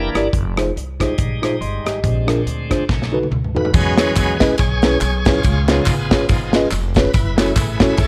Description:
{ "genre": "uptempo gospel", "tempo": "141 BPM", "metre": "4/4", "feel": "swing 57% on 8ths", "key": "E major from 3.7 s", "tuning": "A4 = 440 Hz", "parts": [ { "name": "bright tonewheel organ", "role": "sustained chords", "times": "0.0-8.1 s", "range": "E3 to C#5", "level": "-26 LUFS", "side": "equal", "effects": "slow rotary speaker, overdrive" }, { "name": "upright bass", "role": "bass", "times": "0.0-8.1 s", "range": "F1 to E2", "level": "-25 LUFS", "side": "equal", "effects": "none" }, { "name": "modern studio drum kit", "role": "drums", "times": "0.1-8.1 s", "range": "crash cymbal, hi-hat, kick drum, ride cymbal, rim click, snare drum, toms", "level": "-20 LUFS", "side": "equal", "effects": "none" }, { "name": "mellow tine electric piano", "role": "accompaniment", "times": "0.2-7.9 s", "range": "Bb2 to C6", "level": "-22 LUFS", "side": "equal", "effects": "none" }, { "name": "tambourine and handclaps", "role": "percussion", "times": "3.7-8.1 s", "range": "none", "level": "-33 LUFS", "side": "equal", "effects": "none" } ], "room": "small room ambience", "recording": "none", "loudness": "-17 LUFS", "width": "mono", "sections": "0.0-3.7 A section; 3.7-8.1 B section", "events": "tonewheel organ solo 0.0-3.7, 3.7-8.1; drum fill 2.9-3.7", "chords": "0.3 Fm7; 2.0 Bb7; 2.9 B7; 3.7 E6; 5.4 C#7; 7.1 F#m7" }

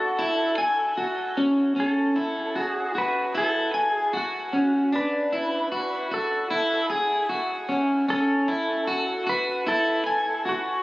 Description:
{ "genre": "dream pop", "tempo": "76 BPM", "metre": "4/4", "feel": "straight", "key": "F# minor", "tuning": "A4 = 441 Hz", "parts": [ { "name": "clean lap steel guitar", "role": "melody", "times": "0.0-10.8 s", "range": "F#4 to B4", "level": "-28 LUFS", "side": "equal", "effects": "shimmer reverb, tape echo" }, { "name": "electric guitar at the edge of break-up", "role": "arpeggios", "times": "0.0-10.8 s", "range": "C#4 to G#5", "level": "-23 LUFS", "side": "equal", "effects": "wide subtle chorus, shimmer reverb, tape echo" } ], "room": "wet booth ambience, RT60 0.2 s", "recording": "recorded on a phone in the room, studio reverb", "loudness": "-22 LUFS", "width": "side -19 dB against mid", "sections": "0.0-10.8 A section", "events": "none", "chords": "0.0 B7(no3) (rootless); 4.9 E7sus4; 8.1 F#m7" }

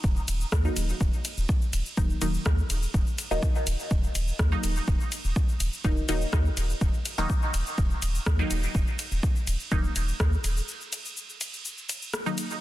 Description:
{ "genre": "dub techno", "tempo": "124 BPM", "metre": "4/4", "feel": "straight", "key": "Eb minor", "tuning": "A4 = 440 Hz", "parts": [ { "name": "round analog bass", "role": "bass", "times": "0.0-10.6 s", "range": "Eb1 to Eb2", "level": "-27 LUFS", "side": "equal", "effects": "sidechain pumping" }, { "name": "deep house drum kit", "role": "drums", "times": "0.0-12.6 s", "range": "hi-hat, ride cymbal, rim click, shaker", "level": "-34 LUFS", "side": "equal", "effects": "overdrive" }, { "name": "electronic kick drum", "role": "drums", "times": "0.0-10.3 s", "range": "none", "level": "-26 LUFS", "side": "equal", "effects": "overdrive" }, { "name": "filtered dub chord stab", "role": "stabs", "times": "0.6-12.5 s", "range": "Eb3 to Eb4", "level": "-33 LUFS", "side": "equal", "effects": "chorus, phaser, sidechain pumping, dub echo" } ], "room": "digital ambience", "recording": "dense, heavily limited modern master", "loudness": "-25 LUFS", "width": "side -15 dB against mid", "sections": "0.0-12.6 A section", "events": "break 10.7-12.6", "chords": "0.0 Ebm" }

